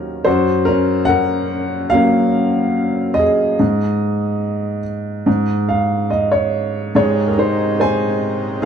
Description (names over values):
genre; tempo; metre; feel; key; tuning
folk; 72 BPM; 4/4; straight; unclear; A4 = 440 Hz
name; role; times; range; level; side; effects
clear upright piano; melody; 0.0-8.7 s; Eb2 to Ab5; -15 LUFS; equal; none
hand-pumped harmonium; sustained chords; 7.0-8.7 s; Ab2 to Eb4; -24 LUFS; equal; none
room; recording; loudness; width
wet studio reverb, RT60 0.5 s; heard from further back in the room; -15 LUFS; side -8 dB against mid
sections
0.0-8.7 A section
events
upright piano fill 5.3-6.9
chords
0.3 Gb; 3.6 N.C.; 6.9 Ab